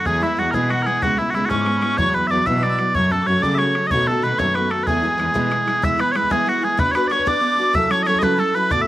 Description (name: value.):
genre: celtic folk, Celtic jig.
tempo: 125 BPM (dotted quarters).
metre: 6/8.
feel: straight.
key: E mixolydian.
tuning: A4 = 442 Hz.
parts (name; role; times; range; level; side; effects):
mellow small bagpipes; melody; 0.0-8.9 s; C#4 to E5; -19 LUFS; right 1 dB; none.
picked steel-string acoustic guitar; accompaniment; 0.0-8.9 s; D2 to B4; -23 LUFS; equal; none.
bright wooden whistle; second line; 0.1-8.9 s; E5 to E6; -28 LUFS; left 2 dB; slapback echo.
muted cello; bass; 0.1-5.5 s; C#2 to C#3; -24 LUFS; equal; none.
bodhran; percussion; 0.1-8.8 s; none; -27 LUFS; left 1 dB; none.
room: little or no reverb.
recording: recorded outdoors, with no room sound.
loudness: -16 LUFS.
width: side -15 dB against mid.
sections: 0.0-5.8 A section; 5.8-8.9 B section.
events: none.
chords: 0.1 E; 1.0 C#m7; 2.0 Esus2; 2.9 F#m; 3.9 B7; 4.9 E; 6.8 Bm; 7.7 F#m7.